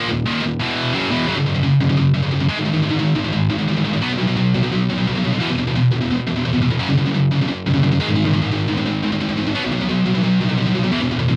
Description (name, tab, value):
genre	metal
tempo	174 BPM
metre	4/4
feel	straight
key	unclear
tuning	A4 = 440 Hz
part	scooped high-gain guitar	solo	0.0-11.4 s	Eb2 to B3	-18 LUFS	equal	distortion
room	little or no reverb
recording	dry, close 1970s-style studio recording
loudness	-19 LUFS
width	mono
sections	0.0-1.3 A section; 1.3-11.4 B section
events	none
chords	0.0 Eb5; 0.6 E5; 1.0 Esus2; 1.3 Gb5; 2.5 Ab5; 4.0 B5; 5.4 E5; 6.8 Gb5; 8.0 Ab5; 9.6 B5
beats	0.27 0.61 0.95 | 1.30 1.64 1.98 2.33 | 2.67 3.01 3.36 3.70 | 4.05 4.39 4.74 5.08 | 5.42 5.77 6.11 6.46 | 6.80 7.15 7.49 7.84 | 8.18 8.53 8.87 9.22 | 9.56 9.90 10.25 10.59 | 10.94 11.28